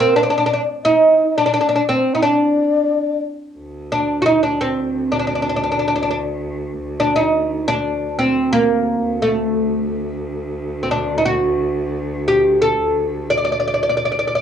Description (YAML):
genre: Arabic maqam ensemble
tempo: 88 BPM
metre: 4/4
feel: straight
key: D maqam hijaz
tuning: A4 = 440 Hz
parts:
  - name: oud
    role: melody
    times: 0.0-14.4 s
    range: A3 to D5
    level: -16 LUFS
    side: right 1 dB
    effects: cassette tape
  - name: breathy mellow low ney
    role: second line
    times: 0.0-3.2 s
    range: Bb4 to Eb5+30c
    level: -18 LUFS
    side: left 4 dB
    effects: none
  - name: rich cello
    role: drone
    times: 3.6-14.4 s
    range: D2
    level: -26 LUFS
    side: equal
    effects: none
room: moderate small room reverb, RT60 0.5 s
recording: home recording on cassette, small room reverb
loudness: -16 LUFS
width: side -8 dB against mid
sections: 0.0-3.6 A section; 3.6-14.4 B section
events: none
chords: none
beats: 0.16 | 0.84 1.52 2.21 2.89 | 3.57 4.25 4.93 5.62 | 6.30 6.98 7.66 8.34 | 9.02 9.71 10.39 11.07 | 11.75 12.44 13.12 13.80